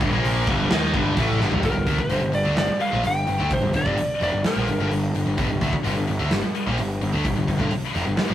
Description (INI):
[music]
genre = hard rock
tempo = 128 BPM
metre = 4/4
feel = straight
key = G minor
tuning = A4 = 442 Hz
[part]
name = cranked stack guitar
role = riff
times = 0.0-8.3 s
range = F2 to Eb4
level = -31 LUFS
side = right 3 dB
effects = overdrive
[part]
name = cranked stack guitar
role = riff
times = 0.0-1.6 s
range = F2 to Eb4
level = -26 LUFS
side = equal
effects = overdrive, phaser
[part]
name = high-gain distorted guitar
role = riff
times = 0.0-8.3 s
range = F2 to Eb4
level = -28 LUFS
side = left 4 dB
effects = distortion
[part]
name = fuzz picked electric bass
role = bass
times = 0.0-8.3 s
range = F1 to Eb2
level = -24 LUFS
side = equal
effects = overdrive
[part]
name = big rock drum kit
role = drums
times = 0.0-8.3 s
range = hi-hat, kick drum, snare drum, toms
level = -26 LUFS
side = equal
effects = none
[part]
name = lightly driven lead guitar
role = melody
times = 1.7-4.9 s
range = Bb4 to G5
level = -25 LUFS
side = equal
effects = none
[sound]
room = moderate stone room reverb, RT60 1.2 s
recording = rough rehearsal-room recording, tube saturation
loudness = -20 LUFS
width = side -12 dB against mid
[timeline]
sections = 0.0-1.6 A section; 1.6-8.3 B section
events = drum fill 1.4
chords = 0.0 Gm